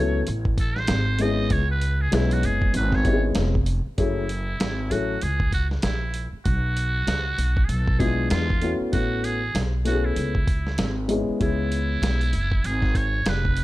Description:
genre	hip hop, jazz-hop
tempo	97 BPM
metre	4/4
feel	swing 59% on 16ths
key	F# minor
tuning	A4 = 441 Hz
part	trumpet with metal mute	melody	0.0-13.6 s	E4 to D#5	-29 LUFS	right 2 dB	none
part	dark grand piano	accompaniment	0.0-12.3 s	F#3 to A4	-26 LUFS	left 3 dB	none
part	upright bass	bass	0.0-13.6 s	E#1 to E2	-24 LUFS	equal	none
part	dusty soul sampler-style drum kit	drums	0.3-13.6 s	hi-hat, kick drum, snare drum	-25 LUFS	equal	none
room	small room ambience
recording	none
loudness	-21 LUFS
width	side -17 dB against mid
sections	0.0-4.0 A section; 4.0-13.6 B section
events	muted trumpet solo 0.0-4.0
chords	0.0 A6; 0.9 G#; 1.5 C#m7; 4.0 F#m9; 6.5 Bmadd9; 8.3 E7b9; 8.9 A6; 10.8 G#madd11; 11.4 C#m7

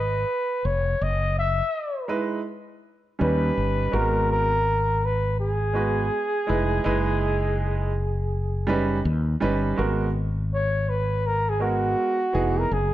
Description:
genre	hip hop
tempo	82 BPM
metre	4/4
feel	swing 64% on 16ths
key	G# minor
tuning	A4 = 440 Hz
part	breathy flugelhorn	melody	0.0-12.9 s	F#4 to E5	-25 LUFS	equal	none
part	mellow fretless electric bass	bass	0.0-12.9 s	E#1 to D#2	-25 LUFS	left 1 dB	none
part	warm grand piano	accompaniment	2.1-12.6 s	E3 to B4	-26 LUFS	right 3 dB	none
room	light reverb, small room ambience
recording	dark, warm production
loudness	-22 LUFS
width	side -14 dB against mid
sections	0.0-9.8 A section; 9.8-12.9 B section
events	flugelhorn solo 9.8-12.9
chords	0.0 G#m; 1.0 F#13sus4; 3.2 D#7b13; 3.9 G#m9; 6.9 F#13sus4; 9.1 D#7b13; 9.8 G#m9

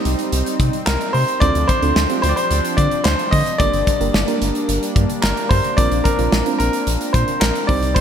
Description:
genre	synth-pop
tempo	110 BPM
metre	4/4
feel	straight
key	Bb major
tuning	A4 = 439 Hz
part	warm concert grand piano	melody	0.0-8.0 s	Bb4 to Eb5	-20 LUFS	equal	shimmer reverb, ping-pong delay
part	mellow FM electric piano	accompaniment	0.0-8.0 s	Bb3 to Eb5	-24 LUFS	right 5 dB	chorus, shimmer reverb
part	warm analog pad	sustained chords	0.0-8.0 s	F3 to Eb4	-26 LUFS	left 2 dB	chorus, tremolo, shimmer reverb
part	round analog bass	bass	0.1-8.0 s	G1 to D3	-20 LUFS	equal	none
part	modern studio drum kit	drums	0.1-8.0 s	handclaps, hi-hat, kick drum, snare drum	-20 LUFS	equal	gated reverb
room	moderate lush hall reverb, RT60 2.6 s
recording	bright 1980s-style digital production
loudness	-15 LUFS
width	side -8 dB against mid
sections	0.0-8.0 A section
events	none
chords	0.0 Cm; 1.4 Dm7; 3.6 Gm; 5.8 Bbadd9

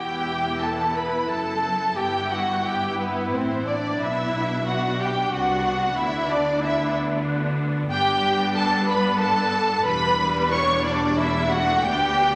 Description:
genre	classical, slow romantic movement for string orchestra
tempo	90 BPM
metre	3/4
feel	rubato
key	E minor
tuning	A4 = 440 Hz
part	warm symphonic violin section	melody	0.0-12.4 s	B4 to C#6	-27 LUFS	equal	none
part	warm symphonic violin section	second line	0.0-12.4 s	B3 to C#5	-28 LUFS	equal	none
part	clear symphonic viola section	accompaniment	0.0-12.4 s	G3 to E4	-32 LUFS	equal	none
part	dark studio double bass section	bass	0.0-12.4 s	E1 to D2	-35 LUFS	equal	none
part	rich symphonic cello section	bass	0.0-12.4 s	D2 to D3	-32 LUFS	equal	none
room	wet scoring stage reverb, RT60 1.8 s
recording	nothing above 10.5 kHz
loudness	-23 LUFS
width	mono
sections	0.0-12.4 A section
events	none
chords	0.0 Em; 2.0 Em/G; 4.0 Bm; 6.0 Bm/D; 7.9 G; 9.9 Em7

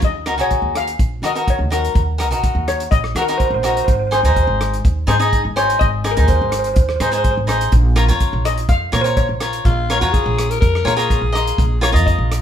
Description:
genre	calypso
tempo	125 BPM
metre	4/4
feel	straight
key	unclear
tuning	A4 = 440 Hz
part	steel pan	melody	0.0-12.4 s	Bb4 to F5	-22 LUFS	equal	none
part	upright bass	bass	0.0-12.4 s	Ab1 to Eb3	-19 LUFS	right 1 dB	none
part	warm soul drum kit	drums	0.0-12.4 s	hi-hat, kick drum, rim click	-19 LUFS	equal	none
part	cavaquinho	accompaniment	0.3-12.4 s	Eb4 to Eb5	-19 LUFS	left 2 dB	none
part	raspy alto saxophone	second line	9.7-11.9 s	F4 to Bb4	-22 LUFS	left 5 dB	none
room	moderate studio reverb, RT60 0.7 s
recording	band playing live in one room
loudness	-14 LUFS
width	side -9 dB against mid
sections	0.0-12.4 A section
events	steel pan solo 0.0-12.4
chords	0.0 Ebm; 3.9 Ab; 7.7 Bbm7

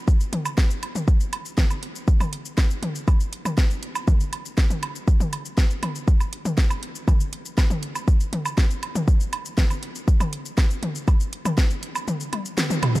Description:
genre	techno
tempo	120 BPM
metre	4/4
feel	straight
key	none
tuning	none
part	electronic kick drum	drums	0.1-11.7 s	none	-18 LUFS	equal	small room ambience
part	house drum kit	drums	0.1-13.0 s	hi-hat, shaker, snare drum, toms, woodblock	-26 LUFS	equal	sidechain pumping on perc, small room ambience, sidechain pumping on toms, sidechain pumping on hats
room	little or no reverb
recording	dark, warm production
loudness	-20 LUFS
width	side -19 dB against mid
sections	0.0-13.0 A section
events	kick drops out 12.1-13.0; drum fill 12.3-13.0; band accent 12.6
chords	none

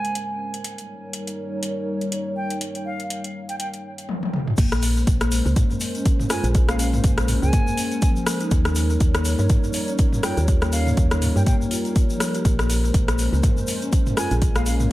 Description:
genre	afro house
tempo	122 BPM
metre	4/4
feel	swing 57% on 16ths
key	Bb dorian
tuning	A4 = 440 Hz
part	concert flute	melody	0.0-14.8 s	F5 to Ab5	-32 LUFS	right 1 dB	dub echo
part	dark analog pad	sustained chords	0.0-14.9 s	G3 to Db5	-30 LUFS	right 1 dB	chorus, sidechain pumping
part	deep house drum kit	drums	0.0-14.9 s	crash cymbal, hi-hat, rim click, toms	-26 LUFS	equal	overdrive
part	marimba with soft mallets	arpeggios	4.6-14.9 s	F3 to Ab4	-27 LUFS	left 2 dB	sidechain pumping, dub echo
part	woody FM bass	bass	4.6-14.9 s	Bb1 to G2	-21 LUFS	equal	sidechain pumping
part	electronic kick drum	drums	4.6-14.5 s	none	-19 LUFS	equal	overdrive
part	egg shaker	percussion	4.6-14.9 s	none	-34 LUFS	left 2 dB	tape echo
room	moderate spring reverb, RT60 2.0 s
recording	echo-heavy mix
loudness	-19 LUFS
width	side -16 dB against mid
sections	0.0-4.6 A section; 4.6-14.9 B section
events	drum fill 4.1-4.6; drop 4.6-14.9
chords	0.0 Bbm9; 0.6 Eb7; 4.6 Bbm9; 8.5 Eb7; 12.4 Bbm9

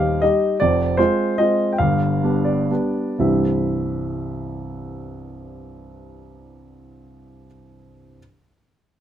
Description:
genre	classical, piano waltz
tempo	114-163 BPM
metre	3/4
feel	rubato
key	unclear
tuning	A4 = 440 Hz
part	warm grand piano	solo	0.0-8.2 s	Eb1 to G5	-18 LUFS	equal	none
room	light reverb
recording	close, detailed microphones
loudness	-17 LUFS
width	side -10 dB against mid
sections	0.0-3.2 A section; 3.2-6.0 B section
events	slowing down 0.0-3.2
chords	0.0 Eb; 0.6 Fm; 1.8 G7; 3.2 C

